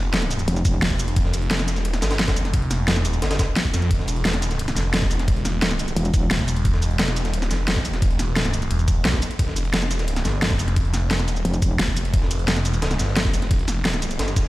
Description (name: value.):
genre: dark technical drum and bass.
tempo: 175 BPM.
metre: 4/4.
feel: straight.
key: unclear.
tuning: A4 = 437 Hz.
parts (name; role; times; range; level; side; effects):
phased detuned saw bass; bass; 0.0-14.4 s; E1 to F2; -23 LUFS; equal; phaser, overdrive.
breakbeat sampler-style drum kit; drums; 0.1-14.5 s; hi-hat, snare drum; -30 LUFS; equal; high-pass filter on snare, high-pass filter on hats, high-pass filter on room.
dubstep drum kit; drums; 0.1-14.4 s; hi-hat, shaker, snare drum; -24 LUFS; equal; overdrive.
metallic wobble bass; bass; 0.5-0.8, 6.0-6.3, 11.4-11.8 s; E1 to F1; -21 LUFS; equal; chorus.
electronic kick drum; drums; 0.7-14.4 s; none; -22 LUFS; equal; none.
room: little or no reverb.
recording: played on a big sound system in a bare room, large studio reverb.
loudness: -19 LUFS.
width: side -17 dB against mid.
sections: 0.0-14.5 A section.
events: none.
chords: 0.0 Fsus2; 3.9 E5; 9.4 Fsus2.